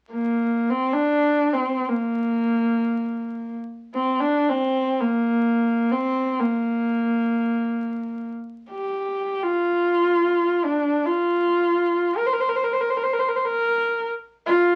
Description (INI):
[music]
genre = mongolian traditional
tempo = free time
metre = none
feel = none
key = Bb gong mode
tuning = A4 = 440 Hz
[part]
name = rich horsehead fiddle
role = melody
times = 0.1-14.8 s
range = Bb3 to C5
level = -22 LUFS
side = equal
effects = none
[sound]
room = wet small room reverb, RT60 0.5 s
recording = very old 78 rpm record, vinyl crackle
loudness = -23 LUFS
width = mono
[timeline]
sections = 0.0-14.8 A section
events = none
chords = none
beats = free time